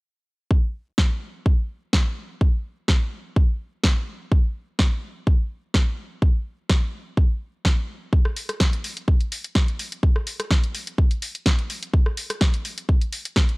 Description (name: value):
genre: house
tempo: 126 BPM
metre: 4/4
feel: straight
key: none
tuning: none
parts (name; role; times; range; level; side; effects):
- electronic kick drum; drums; 0.5-13.5 s; none; -19 LUFS; equal; none
- house drum kit; drums; 1.0-13.6 s; hi-hat, rim click, snare drum; -26 LUFS; equal; sidechain pumping on hats
room: little or no reverb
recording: dry, gritty hardware recording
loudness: -20 LUFS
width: side -28 dB against mid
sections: 0.5-13.6 A section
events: none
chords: none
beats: | 0.51 0.98 1.46 1.94 | 2.41 2.89 3.36 3.84 | 4.32 4.79 5.27 5.75 | 6.22 6.70 7.17 7.65 | 8.13 8.60 9.08 9.55 | 10.03 10.51 10.98 11.46 | 11.94 12.41 12.89 13.36